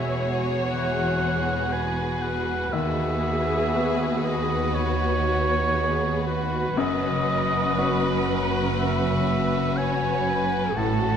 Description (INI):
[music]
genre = cinematic, emotional film score for orchestra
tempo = 60 BPM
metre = 4/4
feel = rubato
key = unclear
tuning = A4 = 440 Hz
[part]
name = warm symphonic violin section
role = melody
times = 0.0-11.2 s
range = G#4 to B4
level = -33 LUFS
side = left 5 dB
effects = none
[part]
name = mellow oboe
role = second line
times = 0.0-11.2 s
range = B4 to A5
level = -27 LUFS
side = right 1 dB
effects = none
[part]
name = warm studio violin section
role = second line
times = 0.0-11.2 s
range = B3 to F#4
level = -31 LUFS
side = left 2 dB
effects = none
[part]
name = clear baby grand piano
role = accompaniment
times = 0.0-11.2 s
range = D#2 to B4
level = -32 LUFS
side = left 2 dB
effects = none
[part]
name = warm symphonic viola section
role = accompaniment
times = 0.0-11.2 s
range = F#4 to C#5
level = -30 LUFS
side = equal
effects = none
[part]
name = concert harp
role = arpeggios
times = 0.0-11.2 s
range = F#2 to B4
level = -32 LUFS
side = left 7 dB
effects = none
[part]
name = warm symphonic cello section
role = bass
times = 0.0-11.2 s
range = D#2 to A2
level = -31 LUFS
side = right 3 dB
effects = none
[part]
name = warm symphonic double bass section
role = bass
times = 0.0-11.2 s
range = E1 to D#2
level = -30 LUFS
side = right 3 dB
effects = none
[sound]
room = wet scoring stage reverb, RT60 2.0 s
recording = none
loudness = -22 LUFS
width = side -8 dB against mid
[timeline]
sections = 0.0-11.2 A section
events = none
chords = 0.0 Eadd9; 2.7 B/D#; 6.8 F#sus4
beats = 0.71 1.72 | 2.72 3.73 4.74 5.75 | 6.76 7.78 8.78 9.77 | 10.76